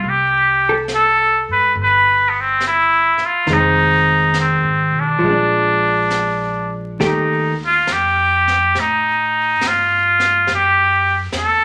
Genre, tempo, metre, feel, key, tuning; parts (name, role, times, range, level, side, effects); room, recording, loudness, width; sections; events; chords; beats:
jazz ballad; 70 BPM; 4/4; swing 68% on 8ths; A4 = 439 Hz
trumpet with straight mute; melody; 0.0-11.6 s; B3 to B4; -16 LUFS; equal
hollow-body jazz guitar; accompaniment; 0.0-7.5 s; Eb3 to A4; -22 LUFS; equal
upright bass; bass; 0.0-11.6 s; F1 to A2; -30 LUFS; equal
jazz brush drum kit; drums; 0.0-11.6 s; brushed snare drum, hi-hat, snare drum; -32 LUFS; equal
moderate large studio reverb, RT60 1.4 s; vinyl crackle; -15 LUFS; mono
0.0-7.0 A section; 7.0-11.6 B section
0.0 C5; 3.5 Fm7; 5.2 Bb7; 7.0 Ebadd9; 10.5 Dbmadd11 (rootless)
| 0.03 0.89 1.75 2.61 | 3.48 4.34 5.22 6.11 | 7.00 7.88 8.76 9.62 | 10.48 11.34